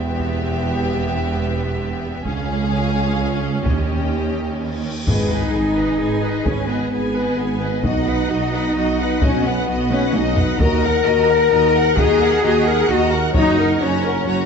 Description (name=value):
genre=cinematic, epic orchestral film score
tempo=130 BPM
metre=3/4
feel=straight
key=G# minor from 5.1 s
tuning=A4 = 441 Hz
part: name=dark symphonic violin section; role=melody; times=0.0-14.5 s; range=D#5 to A#5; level=-31 LUFS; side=left 4 dB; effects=none
part: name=warm symphonic violin section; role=second line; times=0.0-14.5 s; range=G4 to F#5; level=-27 LUFS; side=left 3 dB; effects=none
part: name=rich symphonic viola section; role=accompaniment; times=0.0-14.5 s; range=B3 to B4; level=-27 LUFS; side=right 2 dB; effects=none
part: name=mellow French horn section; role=sustained chords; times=0.0-14.5 s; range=B3 to A#4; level=-21 LUFS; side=left 6 dB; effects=none
part: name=rich symphonic cello section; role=bass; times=0.0-14.5 s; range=C#2 to A#4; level=-25 LUFS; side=right 4 dB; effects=none
part: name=warm studio double bass section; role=bass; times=0.0-14.5 s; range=E1 to F#2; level=-24 LUFS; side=right 4 dB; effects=none
part: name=taiko ensemble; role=drums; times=0.2-13.8 s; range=none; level=-22 LUFS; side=equal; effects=none
part: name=cymbal swell and sub drop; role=sound effects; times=4.7-6.5 s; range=none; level=-28 LUFS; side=equal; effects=none
part: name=dark tuba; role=bass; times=5.1-14.5 s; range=F#1 to D#2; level=-25 LUFS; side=right 5 dB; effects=none
part: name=timpani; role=percussion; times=5.1-5.7, 10.6-11.2 s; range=G#2 to D#3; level=-28 LUFS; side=left 1 dB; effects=none
room=moderate scoring stage reverb, RT60 1.4 s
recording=nothing above 8.0 kHz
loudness=-16 LUFS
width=side -6 dB against mid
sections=0.0-5.1 A section; 5.1-14.5 B section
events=build-up 0.0-5.1; cymbal swell 4.7-5.1; impact 5.1-6.5; drum fill 9.9-10.6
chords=0.0 Em; 2.3 C#; 3.7 D#7; 5.1 G#m; 7.8 B; 10.6 D#m; 13.3 F#